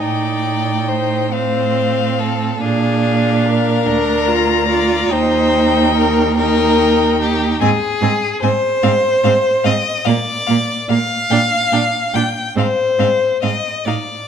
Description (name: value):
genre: classical, slow romantic movement for string quartet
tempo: 48 BPM (dotted quarters)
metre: 6/8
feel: uneven beats, rubato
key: unclear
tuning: A4 = 440 Hz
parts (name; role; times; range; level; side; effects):
- rich violin; melody; 0.0-14.0 s; F5 to Bb5; -23 LUFS; left 10 dB; none
- rich violin; second line; 0.0-14.3 s; G4 to G5; -17 LUFS; left 3 dB; none
- rich viola; accompaniment; 0.0-13.9 s; Bb3 to F4; -21 LUFS; right 2 dB; none
- clear cello; bass; 0.0-13.9 s; D2 to Bb2; -18 LUFS; right 5 dB; none
room: wet recital hall reverb, RT60 1.7 s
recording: minimal, uncompressed stereo recording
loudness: -13 LUFS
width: side -8 dB against mid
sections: 0.0-14.3 A section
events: none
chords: 0.0 F7/A; 2.6 Bb7; 5.1 Eb; 7.6 Ab; 10.1 Bb; 11.3 Gm/Bb; 12.6 Fm (rootless)